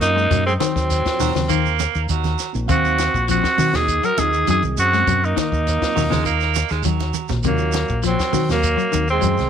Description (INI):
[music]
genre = afrobeat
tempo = 101 BPM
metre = 4/4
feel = straight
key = Eb dorian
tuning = A4 = 441 Hz
[part]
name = raspy tenor saxophone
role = melody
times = 0.0-9.5 s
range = Bb3 to Bb4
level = -20 LUFS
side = equal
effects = none
[part]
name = breathy alto saxophone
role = second line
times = 0.0-9.5 s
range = Gb3 to Gb4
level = -27 LUFS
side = right 12 dB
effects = none
[part]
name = mellow reed electric piano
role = accompaniment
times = 0.0-9.5 s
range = Gb3 to F5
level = -30 LUFS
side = right 13 dB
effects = fast tremolo
[part]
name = fingered electric bass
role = bass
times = 0.0-9.5 s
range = Bb1 to Eb3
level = -22 LUFS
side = left 1 dB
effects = none
[part]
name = compact cocktail drum kit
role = drums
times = 0.0-9.5 s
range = hi-hat, kick drum, snare drum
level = -27 LUFS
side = left 4 dB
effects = none
[part]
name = shekere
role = percussion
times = 0.0-9.5 s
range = none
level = -29 LUFS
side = right 5 dB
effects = none
[part]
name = electric guitar at the edge of break-up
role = arpeggios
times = 0.2-9.4 s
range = C3 to Ab3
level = -24 LUFS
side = left 16 dB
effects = none
[part]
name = congas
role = percussion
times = 0.3-9.5 s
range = none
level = -28 LUFS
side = right 8 dB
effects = none
[part]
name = raspy baritone saxophone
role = second line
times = 1.2-7.3 s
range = Gb3 to Bb3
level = -24 LUFS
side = right 12 dB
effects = none
[sound]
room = moderate spring reverb, RT60 1.4 s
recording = 1960s-style stereo with parts hard left and right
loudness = -16 LUFS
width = side -8 dB against mid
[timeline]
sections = 0.0-9.5 A section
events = drum fill 7.0-7.4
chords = 0.0 Ebm69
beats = | 0.31 0.90 1.50 2.09 | 2.69 3.29 3.88 4.47 | 5.07 5.67 6.26 6.85 | 7.45 8.04 8.64 9.23